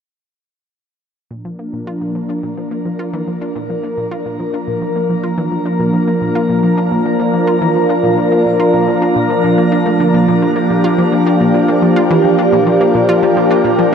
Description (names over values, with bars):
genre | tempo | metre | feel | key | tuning
ambient, sequencer-driven space music | 107 BPM | 4/4 | straight | Bb major | A4 = 440 Hz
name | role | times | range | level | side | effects
phased analog pad | sustained chords | 1.3-13.9 s | F3 to Bb4 | -12 LUFS | equal | phaser, chorus
analog pluck | riff | 1.3-13.9 s | Bb2 to F4 | -20 LUFS | left 1 dB | chorus, ping-pong delay
room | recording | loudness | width
wet shimmer reverb, RT60 7.6 s | none | -12 LUFS | side -7 dB against mid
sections
1.3-13.9 A section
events
fade-in on synth arpeggio sound 1.3-13.9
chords
1.3 Bb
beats
| 1.31 1.87 2.43 2.99 | 3.55 4.11 4.67 5.24 | 5.80 6.36 6.92 7.48 | 8.04 8.60 9.16 9.72 | 10.28 10.84 11.40 11.96 | 12.53 13.09 13.65